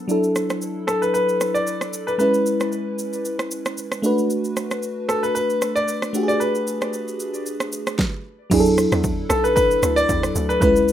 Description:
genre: amapiano.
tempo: 114 BPM.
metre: 4/4.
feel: swing 55% on 16ths.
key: unclear.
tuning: A4 = 439 Hz.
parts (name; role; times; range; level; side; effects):
FM electric piano with soft pad layer; accompaniment; 0.0-10.9 s; F#3 to B4; -22 LUFS; right 1 dB; chorus, low-pass filter.
deep house drum kit; drums; 0.1-10.9 s; crash cymbal, kick drum, rim click, shaker, snare drum; -26 LUFS; right 1 dB; overdrive.
clear baby grand piano; melody; 0.9-10.9 s; A4 to D5; -21 LUFS; left 2 dB; low-pass filter, tape echo.
tight log drum bass; bass; 8.5-10.9 s; B1 to E2; -25 LUFS; right 1 dB; none.
room: moderate studio reverb, RT60 0.6 s.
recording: rough home demo mix.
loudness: -19 LUFS.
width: side -11 dB against mid.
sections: 0.0-8.5 A section; 8.5-10.9 B section.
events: none.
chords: 0.1 E9sus4; 2.2 C#m7; 4.0 Bm7; 8.5 E9sus4.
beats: | 0.09 0.62 1.14 1.67 | 2.20 2.72 3.25 3.78 | 4.30 4.83 5.36 5.88 | 6.41 6.93 7.46 7.99 | 8.51 9.04 9.56 10.09 | 10.62.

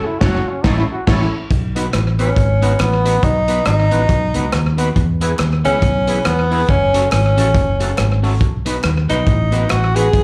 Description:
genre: ska.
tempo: 139 BPM.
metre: 4/4.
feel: swing 59% on 8ths.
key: B mixolydian.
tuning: A4 = 440 Hz.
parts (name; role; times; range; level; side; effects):
clear trombone; melody; 0.0-1.3 s; C#4 to F#4; -25 LUFS; equal; slapback echo.
electric guitar at the edge of break-up; accompaniment; 0.2-10.1 s; B3 to C#5; -27 LUFS; equal; slapback echo.
tonewheel organ; stabs; 0.2-10.1 s; A3 to C#5; -31 LUFS; equal; overdrive, chorus vibrato, slow rotary speaker, slapback echo.
fingered electric bass; bass; 0.2-10.2 s; F#1 to E2; -19 LUFS; equal; none.
crunchy breakbeat drum kit; drums; 0.2-10.2 s; crash cymbal, hi-hat, kick drum, rim click, snare drum; -21 LUFS; equal; slapback echo.
group handclap; percussion; 1.9-9.8 s; none; -34 LUFS; equal; slapback echo.
warm tenor saxophone; melody; 2.2-10.2 s; B3 to G#4; -20 LUFS; equal; slapback echo.
room: light reverb.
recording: live gig heard through the venue's PA, club reverb.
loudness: -16 LUFS.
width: mono.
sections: 0.0-1.5 A section; 1.5-10.2 B section.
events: band accent 0.0-1.5; trombone solo 0.0-1.5.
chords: 0.0 F#m; 0.6 A; 1.5 B; 5.0 E; 6.7 F#m; 8.4 B.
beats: 0.21 0.64 1.07 | 1.51 1.94 2.37 2.80 | 3.23 3.66 4.09 4.53 | 4.96 5.39 5.82 6.25 | 6.68 7.12 7.55 7.98 | 8.41 8.84 9.27 9.71 | 10.14.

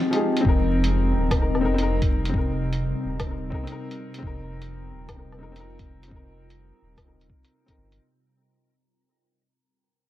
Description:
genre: future garage.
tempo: 127 BPM.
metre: 4/4.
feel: swing 64% on 16ths.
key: unclear.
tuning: A4 = 439 Hz.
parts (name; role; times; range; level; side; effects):
clear upright piano; accompaniment; 0.0-8.0 s; F3 to Bb4; -28 LUFS; left 3 dB; sidechain pumping, tape echo.
ethereal airy pad; sustained chords; 0.0-8.0 s; C3 to F4; -28 LUFS; equal; ensemble chorus, built-in reverb, sidechain pumping.
electronic hi-hat and woodblock; drums; 0.1-8.0 s; none; -31 LUFS; equal; none.
warm sub bass; bass; 0.5-8.0 s; Eb1 to G1; -27 LUFS; equal; sidechain pumping.
electronic kick drum; drums; 0.5-7.8 s; none; -24 LUFS; equal; none.
room: light reverb.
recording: vinyl crackle.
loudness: -21 LUFS.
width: side -13 dB against mid.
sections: 0.0-8.0 A section.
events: fade-out 0.0-8.0.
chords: 0.4 Cm7.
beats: | 0.45 0.92 1.39 1.86 | 2.34 2.81 3.28 3.75 | 4.23 4.70 5.17 5.64 | 6.12 6.59 7.06 7.53.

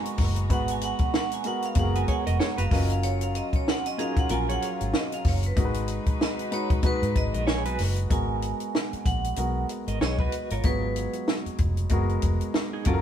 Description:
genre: lush 1970s-style soul.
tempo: 95 BPM.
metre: 4/4.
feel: swing 58% on 16ths.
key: G# dorian.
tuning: A4 = 440 Hz.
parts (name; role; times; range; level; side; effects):
vibraphone with hard mallets; melody; 0.0-11.2 s; B4 to G#5; -32 LUFS; right 3 dB; none.
warm grand piano; accompaniment; 0.0-13.0 s; F#3 to C#5; -31 LUFS; left 1 dB; none.
warm studio string section; sustained chords; 0.0-8.1 s; F#3 to A#5; -38 LUFS; left 1 dB; none.
compact cocktail drum kit; drums; 0.1-13.0 s; hi-hat, kick drum, snare drum; -26 LUFS; equal; none.
vintage muted fingered electric bass; bass; 0.2-13.0 s; E#1 to G#2; -27 LUFS; equal; none.
semi-hollow electric guitar; riff; 2.0-13.0 s; D#4 to D#5; -34 LUFS; right 3 dB; tremolo.
room: light reverb.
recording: band playing live in one room.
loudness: -23 LUFS.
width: side -9 dB against mid.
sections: 0.0-8.1 A section; 8.1-13.0 B section.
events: vibraphone solo 0.0-8.1.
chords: 0.0 G#m9; 2.7 F#maj7; 5.6 G#m7; 8.1 G#m9.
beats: | 0.50 1.14 1.77 2.40 | 3.04 3.67 4.30 4.94 | 5.57 6.21 6.84 7.47 | 8.11 8.74 9.37 10.01 | 10.64 11.28 11.91 12.55.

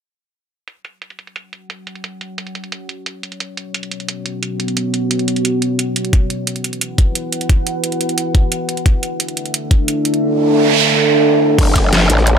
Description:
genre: dark technical drum and bass.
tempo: 176 BPM.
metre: 4/4.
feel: straight.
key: F# minor.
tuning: A4 = 445 Hz.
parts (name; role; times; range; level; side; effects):
deep dark ambient pad; sustained chords; 2.3-12.4 s; B3 to F#5; -18 LUFS; equal; chorus, built-in reverb, sidechain pumping.
dubstep drum kit; drums; 0.7-12.3 s; crash cymbal, hi-hat, snare drum; -20 LUFS; right 2 dB; low-pass filter on hats, low-pass filter on cymbals, low-pass filter on snare, low-pass filter on room.
electronic kick drum; drums; 6.1-11.8 s; none; -13 LUFS; equal; none.
noise sweep; sound effects; 10.4-11.6 s; none; -16 LUFS; right 6 dB; none.
growl bass; bass; 11.6-12.4 s; F#1 to A1; -13 LUFS; equal; chorus, overdrive, sidechain pumping.
jungle sampler-style drum kit; drums; 11.6-12.3 s; hi-hat, snare drum; -25 LUFS; equal; none.
room: light reverb, digital ambience.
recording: none.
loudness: -14 LUFS.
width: side -7 dB against mid.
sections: 0.7-11.6 A section.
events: filter sweep on ambient pad 0.7-11.6; noise sweep 10.4-11.6.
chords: 0.7 F#5; 3.4 B5; 6.1 E5; 8.9 D5; 11.6 F#m.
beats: | 0.68 1.02 1.36 1.70 | 2.04 2.38 2.72 3.06 | 3.40 3.74 4.08 4.43 | 4.77 5.11 5.45 5.79 | 6.13 6.47 6.81 7.15 | 7.49 7.83 8.18 8.52 | 8.86 9.20 9.54 9.88 | 10.22 10.56 10.90 11.24 | 11.59 11.93 12.27.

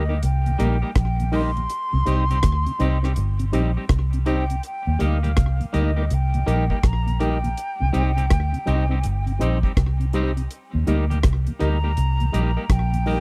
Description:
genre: roots reggae.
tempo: 82 BPM.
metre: 4/4.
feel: swing 64% on 16ths.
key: Eb major.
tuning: A4 = 440 Hz.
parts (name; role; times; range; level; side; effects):
concert flute; melody; 0.0-13.2 s; Eb5 to C6; -32 LUFS; equal; dub echo.
clean electric guitar; accompaniment; 0.0-13.2 s; G3 to G4; -34 LUFS; equal; spring reverb, dub echo.
percussive organ stab; stabs; 0.0-13.2 s; Eb4 to Eb5; -29 LUFS; equal; chorus.
vintage muted fingered electric bass; bass; 0.0-13.2 s; G1 to Eb2; -23 LUFS; equal; none.
mellow tonewheel organ; accompaniment; 0.1-13.2 s; Eb2 to Eb4; -30 LUFS; equal; chorus vibrato, slow rotary speaker.
deep reggae drum kit; drums; 0.2-13.2 s; hi-hat, kick drum, rim click; -23 LUFS; equal; none.
room: little or no reverb.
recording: dry, close 1970s-style studio recording.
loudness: -22 LUFS.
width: mono.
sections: 0.0-13.2 A section.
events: none.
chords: 0.0 Eb; 1.7 Cm; 4.6 Eb; 7.6 Cm; 10.5 Eb.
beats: 0.23 0.96 | 1.70 2.43 3.17 3.90 | 4.63 5.37 6.10 6.84 | 7.57 8.30 9.04 9.77 | 10.50 11.24 11.97 12.70.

